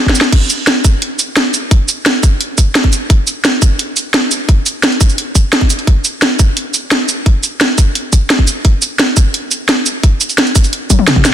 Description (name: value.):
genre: drum and bass.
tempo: 173 BPM.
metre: 4/4.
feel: straight.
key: none.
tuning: none.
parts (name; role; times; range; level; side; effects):
drum and bass drum kit; drums; 0.1-11.3 s; crash cymbal, hi-hat, shaker, snare drum, toms; -12 LUFS; equal; none.
electronic kick drum; drums; 0.1-11.2 s; none; -10 LUFS; equal; none.
room: light reverb.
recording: dense, heavily limited modern master.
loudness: -10 LUFS.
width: side -10 dB against mid.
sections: 0.0-11.3 A section.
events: drum fill 0.0-0.3, 10.9-11.3.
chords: none.